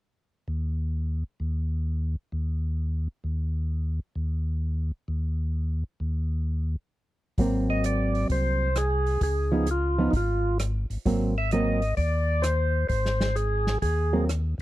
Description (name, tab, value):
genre	soul jazz organ trio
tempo	130 BPM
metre	4/4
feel	swing 67% on 8ths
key	Ab mixolydian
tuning	A4 = 440 Hz
part	mellow tonewheel organ	bass	0.5-14.6 s	Ab1 to Eb2	-26 LUFS	equal	slow rotary speaker
part	hollow-body jazz guitar	accompaniment	7.4-14.3 s	F3 to Eb4	-26 LUFS	right 2 dB	none
part	open jazz drum kit	drums	7.4-14.4 s	hi-hat, kick drum, rim click, snare drum	-30 LUFS	equal	none
part	percussive tonewheel organ	melody	7.7-14.2 s	Eb4 to Fb5	-28 LUFS	equal	slow rotary speaker
room	small room ambience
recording	dry, close 1970s-style studio recording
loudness	-24 LUFS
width	side -16 dB against mid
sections	0.0-7.4 A section; 7.4-14.6 B section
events	break 6.9-7.4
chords	0.0 N.C.; 7.4 Ab9; 9.2 Db9; 11.1 Ab9